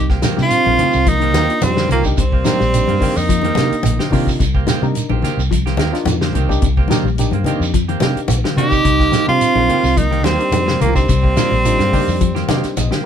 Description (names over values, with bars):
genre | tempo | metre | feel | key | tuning
afrobeat | 108 BPM | 4/4 | straight | C minor | A4 = 439 Hz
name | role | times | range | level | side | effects
bright tenor saxophone | melody | 0.0-4.1, 8.6-13.0 s | Bb3 to G4 | -17 LUFS | equal | none
breathy trombone | second line | 0.0-4.1, 8.6-13.0 s | F3 to Eb4 | -22 LUFS | right 6 dB | none
mellow electric guitar | arpeggios | 0.0-13.0 s | C3 to G3 | -23 LUFS | left 7 dB | none
vintage muted fingered electric bass | bass | 0.0-12.9 s | Bb1 to C3 | -19 LUFS | equal | none
semi-hollow electric guitar | stabs | 0.1-13.0 s | Eb3 to G4 | -25 LUFS | right 7 dB | none
warm soul drum kit | drums | 0.1-13.0 s | hi-hat, kick drum, snare drum | -20 LUFS | equal | none
congas | percussion | 0.2-12.9 s | none | -24 LUFS | left 2 dB | none
shekere | percussion | 0.2-12.9 s | none | -25 LUFS | right 6 dB | none
barky reed electric piano | accompaniment | 0.4-13.1 s | Bb3 to G5 | -25 LUFS | left 3 dB | overdrive
room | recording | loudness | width
moderate small room reverb, RT60 0.5 s | band playing live in one room | -13 LUFS | side -8 dB against mid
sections
0.0-13.1 A section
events
reed electric piano fill 12.5-13.1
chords
0.0 Cm7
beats
0.51 1.06 1.62 | 2.17 2.73 3.29 3.84 | 4.40 4.96 5.51 6.07 | 6.62 7.18 7.74 8.30 | 8.85 9.41 9.97 10.53 | 11.09 11.64 12.20 12.76